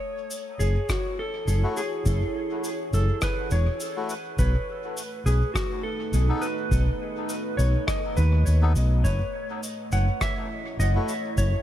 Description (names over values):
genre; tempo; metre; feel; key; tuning
ambient dub; 103 BPM; 4/4; swing 54% on 16ths; F# dorian; A4 = 440 Hz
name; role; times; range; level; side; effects
clean lap steel guitar; melody; 0.0-11.6 s; F#4 to F#5; -31 LUFS; left 1 dB; dub echo
deep dark ambient pad; sustained chords; 1.2-11.6 s; A3 to F#5; -34 LUFS; right 3 dB; chorus, built-in reverb
cabasa and rim click; drums; 0.3-11.5 s; none; -35 LUFS; left 1 dB; dub echo
overdriven fingered electric bass; bass; 0.6-11.5 s; E1 to D#2; -21 LUFS; equal; none
electronic kick drum; drums; 0.9-11.5 s; none; -29 LUFS; equal; none
melodica; stabs; 1.6-11.1 s; A3 to A4; -37 LUFS; left 4 dB; dub echo
room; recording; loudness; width
small room ambience; none; -23 LUFS; side -12 dB against mid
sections
0.0-11.6 A section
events
none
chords
0.0 F#m7; 4.4 B7; 9.0 F#m7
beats
0.31 0.89 1.48 | 2.06 2.64 3.22 3.81 | 4.39 4.97 5.55 6.13 | 6.72 7.30 7.88 8.47 | 9.05 9.63 10.21 10.80 | 11.38